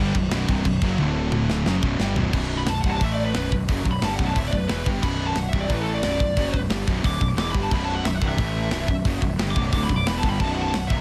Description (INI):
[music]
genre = heavy metal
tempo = 179 BPM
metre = 4/4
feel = straight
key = B phrygian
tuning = A4 = 440 Hz
[part]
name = crunchy overdriven guitar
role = riff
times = 0.0-2.3, 7.7-11.0 s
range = B1 to A3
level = -33 LUFS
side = equal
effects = none
[part]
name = distorted electric guitar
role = riff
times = 0.0-11.0 s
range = B1 to A3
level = -32 LUFS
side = equal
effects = distortion
[part]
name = high-gain distorted guitar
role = riff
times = 0.0-11.0 s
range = B1 to A3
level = -32 LUFS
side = equal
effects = distortion
[part]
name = fuzz picked electric bass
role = bass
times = 0.0-11.0 s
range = B0 to A1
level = -29 LUFS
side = equal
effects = overdrive
[part]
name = tight metal drum kit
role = drums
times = 0.1-11.0 s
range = crash cymbal, hi-hat, kick drum, snare drum, toms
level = -28 LUFS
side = equal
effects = none
[part]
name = high-gain lead guitar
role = melody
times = 2.6-11.0 s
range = A4 to D6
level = -31 LUFS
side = equal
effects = distortion
[sound]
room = light reverb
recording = none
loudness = -23 LUFS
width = mono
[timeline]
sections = 0.0-2.3 A section; 2.3-11.0 B section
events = half time 0.0-2.3; drum fill 1.0-2.3; lead electric guitar solo 2.3-11.0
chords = 0.0 Bm; 1.0 D5; 1.7 Bm; 2.3 B5; 3.0 A5; 3.3 Bm; 5.7 A5; 6.0 Bm; 8.4 A5; 8.7 Bm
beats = 0.32 0.65 | 0.99 1.32 1.66 2.00 | 2.33 2.67 3.01 3.34 | 3.68 4.02 4.35 4.69 | 5.03 5.36 5.70 6.04 | 6.37 6.71 7.04 7.38 | 7.72 8.05 8.39 8.72 | 9.06 9.39 9.73 10.06 | 10.40 10.73